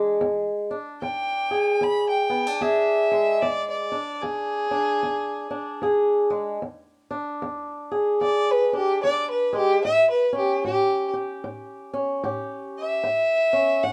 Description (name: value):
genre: acoustic country blues, solo or duo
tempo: 75 BPM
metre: 4/4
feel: swing 61% on 8ths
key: E mixolydian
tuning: A4 = 438 Hz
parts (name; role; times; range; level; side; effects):
- fingerpicked swing-style acoustic guitar; accompaniment; 0.0-13.9 s; E2 to G#4; -27 LUFS; equal; none
- warm fiddle; melody; 1.0-13.9 s; G4 to B5; -24 LUFS; equal; none
room: moderate studio reverb, RT60 0.6 s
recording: none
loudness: -24 LUFS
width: mono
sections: 0.0-13.9 A section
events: none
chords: 0.0 E7; 9.8 A7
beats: | 0.19 0.99 1.79 2.60 | 3.40 4.20 5.00 5.81 | 6.61 7.41 8.22 9.02 | 9.82 10.62 11.43 12.23 | 13.03 13.83